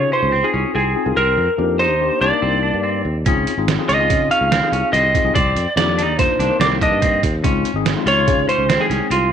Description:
progressive instrumental, band music in an uneven meter; 144 BPM; 5/4; straight; A4 = 439 Hz
lightly driven lead guitar; melody; 0.0-9.3 s; F4 to F5; -17 LUFS; right 1 dB
barky tine electric piano; accompaniment; 0.0-9.2 s; C3 to G5; -24 LUFS; left 14 dB; fast stereo tremolo
clean electric guitar; arpeggios; 0.0-9.3 s; C4 to F4; -24 LUFS; right 1 dB
sustaining fretless electric bass; bass; 0.0-9.3 s; Ab1 to Db3; -22 LUFS; equal
trip hop sampler-style drum kit; drums; 3.3-9.2 s; hi-hat, kick drum, snare drum; -21 LUFS; right 4 dB
light reverb, digital ambience; 1960s-style stereo; -14 LUFS; side -8 dB against mid
0.0-9.3 A section
0.0 Dbmaj9; 1.2 Cm9; 3.3 Dbmaj9; 5.3 Cm9; 7.4 Dbmaj9

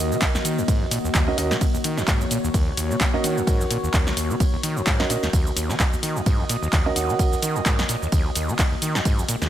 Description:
acid house; 129 BPM; 4/4; swing 56% on 16ths; Eb minor pentatonic; A4 = 442 Hz
warbly tape-like pad; sustained chords; 0.0-9.5 s; Eb3 to Eb5; -29 LUFS; left 1 dB; chorus, built-in reverb, sidechain pumping
overdriven acid bass; riff; 0.0-9.5 s; Db2 to Eb3; -26 LUFS; equal; distortion, digital delay
dark concert grand piano; stabs; 0.0-8.4 s; Db4 to Gb5; -29 LUFS; right 4 dB; digital delay
punchy analog drum machine; drums; 0.1-9.5 s; handclaps, hi-hat, ride cymbal, shaker, snare drum; -26 LUFS; equal
electronic kick drum; drums; 0.2-9.2 s; -22 LUFS; equal
light reverb; -19 LUFS; side -11 dB against mid
0.0-9.5 A section
0.0 Ebm7

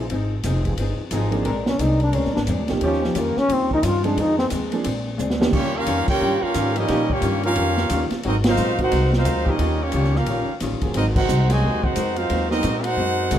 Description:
jazz, big band swing; 177 BPM; 4/4; swing 62% on 8ths; Eb major from 5.5 s; A4 = 440 Hz
clear trombone section; sustained chords; 0.0-13.4 s; F3 to Bb4; -30 LUFS; equal
upright bass; bass; 0.0-13.4 s; Eb1 to Bb2; -24 LUFS; equal
vintage hollow-body jazz guitar; accompaniment; 0.1-13.4 s; F2 to Bb4; -28 LUFS; left 3 dB
open jazz drum kit; drums; 0.1-13.4 s; crash cymbal, hi-hat, kick drum, ride cymbal, snare drum; -27 LUFS; equal
clear upright piano; accompaniment; 1.3-5.5 s; F3 to Ab4; -28 LUFS; right 4 dB
breathy trombone; melody; 1.7-4.5 s; F3 to F4; -22 LUFS; left 1 dB
warm trombone section; second line; 5.5-13.4 s; C3 to G4; -25 LUFS; right 3 dB
clear trumpet section; melody; 5.6-13.4 s; Bb3 to Ab5; -24 LUFS; equal
moderate large studio reverb, RT60 1.3 s; dark, warm production; -18 LUFS; side -10 dB against mid
0.0-5.5 A section; 5.5-13.4 B section
trombone solo 0.0-5.5; drum fill 5.2-5.5; band accent 6.0, 8.4, 11.1
0.1 Fm7; 1.5 Bb9; 2.8 Eb9; 4.2 Fm7; 4.9 Bb9; 5.5 Eb9; 8.2 Ab9; 9.6 Eb9; 10.9 Ab9

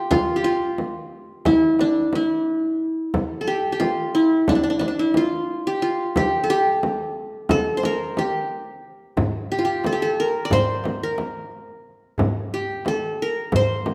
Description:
Turkish makam ensemble; 179 BPM (eighths); 9/8; straight; G makam huseyni; A4 = 440 Hz
qanun; melody; 0.0-13.9 s; D4 to D5; -23 LUFS; equal
frame drum; percussion; 0.1-13.9 s; -28 LUFS; equal
darbuka; percussion; 9.2-13.9 s; -29 LUFS; equal
wet recital hall reverb, RT60 1.7 s; -22 LUFS; mono
0.0-13.9 A section

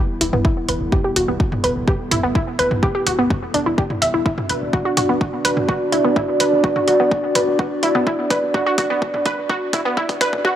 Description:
melodic techno; 126 BPM; 4/4; straight; E minor; A4 = 440 Hz
dark analog pad; sustained chords; 0.0-10.6 s; G3 to D5; -21 LUFS; right 1 dB; lush chorus, sidechain pumping
wide unison pluck; arpeggios; 0.0-10.6 s; B3 to E5; -20 LUFS; equal; sidechain pumping, tape echo
tight sequencer bass; bass; 0.2-10.4 s; D1 to E1; -29 LUFS; equal; sidechain pumping
punchy analog drum machine; drums; 0.2-10.4 s; hi-hat, toms; -23 LUFS; right 1 dB; sidechain pumping on toms, sidechain pumping on hats
electronic kick drum; drums; 0.4-10.5 s; -20 LUFS; equal
light reverb; dry, gritty hardware recording, transformer saturation, high-pass filter; -16 LUFS; side -10 dB against mid
0.0-10.6 A section
build-up 0.0-10.6; filter sweep on synth arpeggio sound 0.0-10.6; drum fill 4.3-10.6
0.0 Em; 4.3 Bm

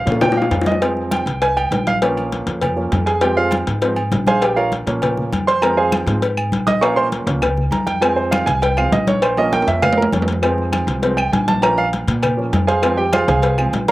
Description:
latin, salsa; 200 BPM; 4/4; straight; F minor; A4 = 441 Hz
clear grand piano; accompaniment; 0.0-13.9 s; F3 to Eb6; -18 LUFS; right 2 dB
upright bass; bass; 0.1-13.9 s; Bb1 to Bb2; -22 LUFS; equal
congas; percussion; 0.1-13.9 s; -24 LUFS; left 2 dB
cowbell and bongos; percussion; 0.1-13.9 s; -22 LUFS; left 4 dB
agogo bells and timbales; percussion; 0.2-13.9 s; -25 LUFS; right 3 dB
claves; percussion; 5.6-13.7 s; -28 LUFS; left 2 dB
little or no reverb; recorded outdoors, with no room sound; -15 LUFS; side -17 dB against mid
0.0-13.9 A section
drum fill 0.0-0.8, 9.5-10.4; grand piano solo 0.0-13.9
0.0 Bbm; 0.8 Fm; 2.0 Bbm; 3.2 Fm; 4.4 Bbm; 5.6 Fm; 6.8 Bbm; 8.0 Fm; 9.2 Bbm; 10.4 Fm; 11.6 Bbm; 12.8 Fm

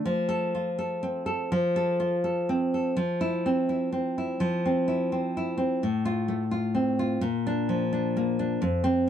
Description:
romantic piece for solo classical guitar; 85 BPM; 4/4; rubato; F major; A4 = 440 Hz
nylon-string guitar; solo; 0.0-9.1 s; F2 to A4; -24 LUFS; equal
light reverb; dry, close 1970s-style studio recording; -25 LUFS; side -9 dB against mid
0.1-9.1 A section
0.1 F; 3.0 C/F; 5.8 F/A; 7.2 Bb

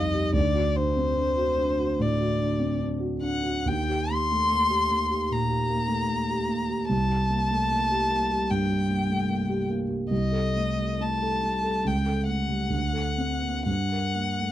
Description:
classical, romantic duo for violin and grand piano; 61-77 BPM; 4/4; rubato; A4 = 438 Hz
rich violin; melody; 0.0-14.5 s; C5 to C6; -27 LUFS; left 1 dB
dark concert grand piano; accompaniment; 0.0-14.5 s; C2 to Bb4; -25 LUFS; equal
moderate studio reverb, RT60 0.8 s; dark, warm production; -23 LUFS; side -12 dB against mid
0.0-14.5 A section
0.4 D7; 3.7 Eb; 6.9 C5; 10.1 Adim/C; 11.9 A7/C#; 12.7 D7; 13.7 Gm

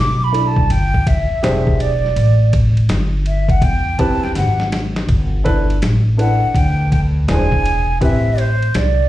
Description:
hip hop, jazz-hop; 82 BPM; 4/4; swing 66% on 16ths; G major; A4 = 440 Hz
breathy mellow jazz flute; melody; 0.0-9.1 s; C5 to D6; -20 LUFS; right 2 dB; slapback echo
upright bass; bass; 0.0-9.1 s; E1 to E2; -16 LUFS; equal
warm grand piano; accompaniment; 0.3-8.5 s; C4 to D5; -22 LUFS; equal; slapback echo
boom bap sampler-style drum kit; drums; 0.3-9.0 s; hi-hat, kick drum, ride cymbal, snare drum; -19 LUFS; equal
little or no reverb; live gig heard through the venue's PA, club reverb; -13 LUFS; side -14 dB against mid
0.0-5.1 A section; 5.1-9.1 B section
flute solo 0.0-5.1; drum fill 4.4-5.1
0.0 G69; 1.4 E7alt; 2.2 Am7; 5.1 G69; 7.3 Eaug7; 8.0 Am7

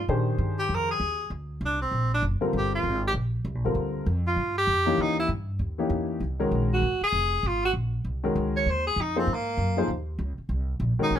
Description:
modal jazz; 196 BPM; 4/4; swing 62% on 8ths; Ab mixolydian from 6.2 s; A4 = 440 Hz
clear tenor saxophone; melody; 0.0-11.2 s; Bb3 to Db5; -26 LUFS; right 1 dB
upright bass; bass; 0.0-11.2 s; F1 to Bb2; -28 LUFS; equal
warm upright piano; accompaniment; 0.1-11.2 s; D3 to C5; -27 LUFS; left 3 dB
little or no reverb; close, detailed microphones; -24 LUFS; side -10 dB against mid
0.0-6.2 A section; 6.2-11.2 A section
tenor saxophone solo 0.0-11.2
0.0 Bb9; 1.3 Gm; 5.0 Eb7b9; 6.2 Ab13

